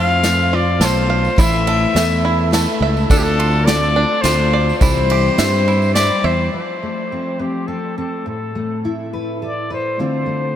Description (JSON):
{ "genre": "indie folk with a building arrangement", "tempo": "105 BPM", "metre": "3/4", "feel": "straight", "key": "unclear", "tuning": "A4 = 442 Hz", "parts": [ { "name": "warm trumpet", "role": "melody", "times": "0.0-10.6 s", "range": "G4 to F5", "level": "-20 LUFS", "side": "left 2 dB", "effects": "none" }, { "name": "picked plugged-in steel-string acoustic guitar", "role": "accompaniment", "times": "0.0-6.6 s", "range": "A2 to C5", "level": "-23 LUFS", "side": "left 5 dB", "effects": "lush chorus" }, { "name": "bluegrass banjo", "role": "arpeggios", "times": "0.0-6.5 s", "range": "D4 to F5", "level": "-23 LUFS", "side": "right 6 dB", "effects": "diffuse ambient delay" }, { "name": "fingered electric bass", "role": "bass", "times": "0.0-6.5 s", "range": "A1 to G2", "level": "-18 LUFS", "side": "right 1 dB", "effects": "none" }, { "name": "unplugged drum kit", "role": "drums", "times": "0.2-6.1 s", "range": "kick drum, ride cymbal, snare drum", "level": "-20 LUFS", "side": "equal", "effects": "none" }, { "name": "tambourine", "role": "percussion", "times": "0.2-6.1 s", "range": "none", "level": "-32 LUFS", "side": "right 4 dB", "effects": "none" }, { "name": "fingerpicked steel-string acoustic guitar", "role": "accompaniment", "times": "6.5-10.6 s", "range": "A2 to B4", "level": "-23 LUFS", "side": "left 1 dB", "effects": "lush chorus" } ], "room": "moderate huge ambient reverb, RT60 5.0 s", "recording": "dreamy mix soaked in reverb", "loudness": "-14 LUFS", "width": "side -10 dB against mid", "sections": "0.0-6.5 A section; 6.5-10.6 B section", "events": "none", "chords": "0.0 F; 1.4 Asus2; 3.1 Dm7; 4.8 C; 6.5 F; 8.3 Asus2; 10.0 Dm7" }